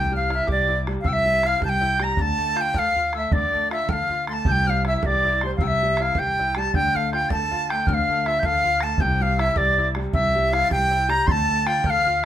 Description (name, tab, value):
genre	celtic folk, Celtic jig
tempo	106 BPM (dotted quarters)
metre	6/8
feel	straight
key	unclear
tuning	A4 = 440 Hz
part	bright reedy wooden flute	melody	0.0-12.2 s	C5 to C6	-22 LUFS	equal	none
part	mellow tin whistle	second line	0.0-12.2 s	C6 to Bb6	-27 LUFS	left 1 dB	none
part	bright upright piano	accompaniment	0.0-12.2 s	C3 to A4	-30 LUFS	left 1 dB	none
part	upright bass	bass	0.0-12.2 s	C2 to D2	-26 LUFS	equal	none
part	bodhran	percussion	0.1-12.1 s	none	-28 LUFS	right 1 dB	none
room	moderate studio reverb, RT60 0.7 s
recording	minimal, uncompressed stereo recording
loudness	-19 LUFS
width	side -11 dB against mid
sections	0.0-4.5 A section; 4.5-12.2 A section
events	none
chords	0.0 C; 2.2 Dm; 4.5 C; 6.7 Dm; 9.0 C; 11.3 Dm